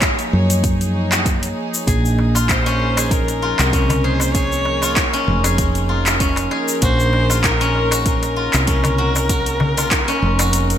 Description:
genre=organic downtempo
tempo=97 BPM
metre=4/4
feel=swing 55% on 16ths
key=unclear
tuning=A4 = 440 Hz
part: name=rich chamber string section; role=sustained chords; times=0.0-10.8 s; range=F3 to Db5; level=-26 LUFS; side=equal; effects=sidechain pumping
part: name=woody fretless electric bass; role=bass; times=0.0-10.8 s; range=F1 to Gb2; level=-19 LUFS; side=equal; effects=none
part: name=deep house drum kit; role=drums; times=0.0-10.8 s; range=handclaps, hi-hat, shaker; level=-21 LUFS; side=left 1 dB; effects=overdrive, gated reverb
part: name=electronic kick drum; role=drums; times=0.0-10.1 s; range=none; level=-21 LUFS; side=equal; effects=overdrive
part: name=steel-string zither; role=arpeggios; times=1.9-10.8 s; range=Db4 to Ab4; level=-22 LUFS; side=left 1 dB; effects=ping-pong delay
part: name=darbuka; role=percussion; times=2.2-10.5 s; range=none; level=-26 LUFS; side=left 2 dB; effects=none
part: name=clear kamancheh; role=melody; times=2.5-10.8 s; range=Bb4 to Db5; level=-23 LUFS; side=left 1 dB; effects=ping-pong delay
room=light reverb, studio reverb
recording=bright 1980s-style digital production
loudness=-15 LUFS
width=side -10 dB against mid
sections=0.0-10.8 A section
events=kick drops out 10.5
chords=0.0 Ebm7; 1.9 Bbm7; 6.8 Gbmaj7/Bb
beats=0.02 0.64 1.25 | 1.87 2.49 3.11 3.73 | 4.35 4.97 5.58 6.20 | 6.82 7.44 8.06 8.68 | 9.30 9.91 10.53

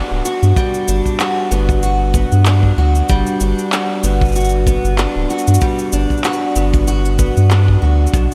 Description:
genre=folktronica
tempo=95 BPM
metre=4/4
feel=swing 56% on 16ths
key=G major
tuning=A4 = 439 Hz
part: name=picked steel-string acoustic guitar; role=arpeggios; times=0.0-8.3 s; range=B2 to F#4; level=-20 LUFS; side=equal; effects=lush chorus, diffuse ambient delay
part: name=round analog bass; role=bass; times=0.1-8.3 s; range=D1 to G2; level=-16 LUFS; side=equal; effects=none
part: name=electronic cabasa and handclaps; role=drums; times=0.3-8.3 s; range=none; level=-27 LUFS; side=equal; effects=overdrive
part: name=kick drum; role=drums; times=0.6-8.3 s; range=none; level=-20 LUFS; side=equal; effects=none
room=light reverb, studio reverb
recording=none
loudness=-15 LUFS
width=mono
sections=0.0-8.3 A section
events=none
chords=0.0 Gmaj7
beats=| 0.56 1.20 1.83 2.46 | 3.09 3.72 4.35 4.99 | 5.62 6.25 6.88 7.51 | 8.14

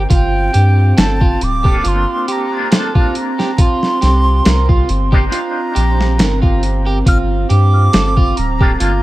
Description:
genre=trip hop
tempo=69 BPM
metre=4/4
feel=swing 55% on 16ths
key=G minor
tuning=A4 = 440 Hz
part: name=mellow silver concert flute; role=melody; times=0.0-9.0 s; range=G5 to F6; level=-20 LUFS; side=right 1 dB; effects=tape echo
part: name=electric guitar with an envelope filter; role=accompaniment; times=0.0-9.0 s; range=A3 to C5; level=-24 LUFS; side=left 1 dB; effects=tremolo, tape echo
part: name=soft dub sub bass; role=bass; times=0.0-9.0 s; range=D1 to G2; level=-14 LUFS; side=equal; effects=none
part: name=bowed-like drone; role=texture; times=0.0-9.0 s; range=C4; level=-24 LUFS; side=right 1 dB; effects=built-in reverb
part: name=electric guitar at the edge of break-up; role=arpeggios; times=0.1-9.0 s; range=F4 to Bb4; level=-22 LUFS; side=right 3 dB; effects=tape echo
part: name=boom bap sampler-style drum kit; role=drums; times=0.1-9.0 s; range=hi-hat, kick drum, snare drum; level=-14 LUFS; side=equal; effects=vintage 12-bit sampler grit
room=little or no reverb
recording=echo-heavy mix, vinyl crackle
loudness=-11 LUFS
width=side -17 dB against mid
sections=0.0-9.0 A section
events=none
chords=0.1 Gm9; 3.6 Cm11; 7.1 Gm9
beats=| 0.11 0.98 1.84 2.71 | 3.58 4.45 5.32 6.19 | 7.06 7.93 8.80

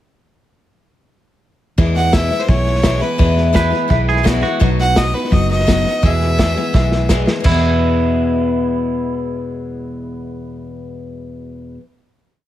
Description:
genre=honky-tonk and classic country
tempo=169 BPM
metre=4/4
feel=straight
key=E major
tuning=A4 = 440 Hz
part: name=picked steel-string acoustic guitar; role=accompaniment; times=1.8-11.8 s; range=E2 to G#4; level=-19 LUFS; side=left 3 dB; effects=none
part: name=vintage muted fingered electric bass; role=bass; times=1.8-11.7 s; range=F#1 to E2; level=-18 LUFS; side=right 1 dB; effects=none
part: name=vintage drum kit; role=drums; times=1.8-7.5 s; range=crash cymbal, hi-hat, kick drum, snare drum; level=-18 LUFS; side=equal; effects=none
part: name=bright fiddle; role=melody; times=2.0-7.1 s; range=B4 to F#5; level=-20 LUFS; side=right 1 dB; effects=none
part: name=twangy electric guitar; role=second line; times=3.6-4.7, 7.5-11.7 s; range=E4 to B4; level=-22 LUFS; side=right 5 dB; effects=spring reverb, tape echo
room=little or no reverb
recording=close, detailed microphones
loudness=-13 LUFS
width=side -13 dB against mid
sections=1.8-7.4 A section; 7.4-10.3 final chord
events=drum fill 6.7-7.4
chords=1.8 E; 4.6 B; 6.0 E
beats=| 1.78 2.13 2.48 2.84 | 3.19 3.54 3.90 4.25 | 4.61 4.96 5.32 5.67 | 6.02 6.38 6.73 7.09 | 7.44 7.80 8.15 8.51 | 8.86 9.21 9.57 9.92

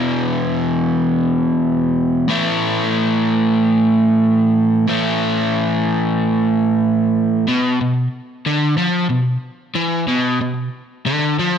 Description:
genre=rock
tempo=92 BPM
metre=4/4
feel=straight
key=B minor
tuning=A4 = 445 Hz
part: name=crunchy overdriven guitar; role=solo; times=0.0-11.6 s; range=E2 to A3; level=-15 LUFS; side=equal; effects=spring reverb, slapback echo
room=digital ambience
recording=none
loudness=-15 LUFS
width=side -8 dB against mid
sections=0.0-7.5 A section; 7.5-11.6 B section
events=none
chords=0.0 E5; 2.3 A5; 7.5 Bm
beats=0.35 1.00 1.65 | 2.29 2.94 3.59 4.24 | 4.89 5.54 6.18 6.83 | 7.48 8.13 8.78 9.43 | 10.08 10.73 11.39

